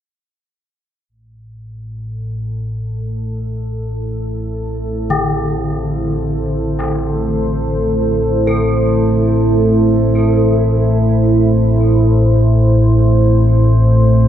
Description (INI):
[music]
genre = dark ambient drone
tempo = free time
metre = none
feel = none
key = A minor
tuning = A4 = 443 Hz
[part]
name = deep dark ambient pad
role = sustained chords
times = 2.9-14.3 s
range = A3 to C5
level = -16 LUFS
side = right 1 dB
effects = chorus, built-in reverb
[part]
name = deep rumbling drone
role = drone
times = 1.4-14.3 s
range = A1 to A2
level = -15 LUFS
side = equal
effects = built-in reverb, analog chorus
[part]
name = gamelan-type bronze metallophone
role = arpeggios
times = 5.1-14.3 s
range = D3 to A4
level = -22 LUFS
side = left 2 dB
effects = analog delay
[sound]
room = wet plate reverb, RT60 3.6 s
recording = dreamy mix soaked in reverb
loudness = -12 LUFS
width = side -10 dB against mid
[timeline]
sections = 1.1-14.3 A section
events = none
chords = 1.1 Am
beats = free time